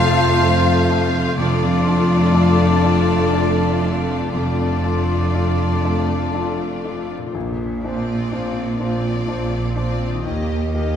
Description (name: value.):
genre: cinematic.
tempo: 61 BPM.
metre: 3/4.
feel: rubato.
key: Bb major from 7.3 s.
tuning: A4 = 440 Hz.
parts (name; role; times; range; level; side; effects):
warm symphonic violin section; melody; 0.0-11.0 s; D5 to F5; -27 LUFS; left 4 dB; none.
mellow clarinet; second line; 0.0-7.0 s; F4; -29 LUFS; left 4 dB; none.
mellow concert flute; second line; 0.0-7.0 s; A5; -30 LUFS; left 3 dB; none.
warm oboe; second line; 0.0-7.0 s; C5 to D5; -28 LUFS; right 1 dB; none.
warm studio violin section; second line; 0.0-11.0 s; F4 to G4; -29 LUFS; left 2 dB; none.
clear grand piano; accompaniment; 0.0-11.0 s; Bb1 to C5; -26 LUFS; left 2 dB; none.
rich symphonic viola section; accompaniment; 0.0-11.0 s; A3 to C4; -30 LUFS; equal; none.
dark French horn section; sustained chords; 0.0-7.0 s; A3 to F4; -26 LUFS; left 2 dB; none.
concert harp; arpeggios; 0.0-11.0 s; F2 to A5; -24 LUFS; left 2 dB; none.
rich symphonic cello section; bass; 0.0-11.0 s; Eb2 to Bb2; -23 LUFS; right 2 dB; none.
rich symphonic double bass section; bass; 0.0-11.0 s; F1 to Eb2; -24 LUFS; right 2 dB; none.
room: wet scoring stage reverb, RT60 1.6 s.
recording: heard from further back in the room.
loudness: -16 LUFS.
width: side -8 dB against mid.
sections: 0.0-7.3 A section; 7.3-11.0 B section.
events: none.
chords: 0.0 F; 1.4 Dm/F; 7.3 Bbadd9; 10.3 Eb.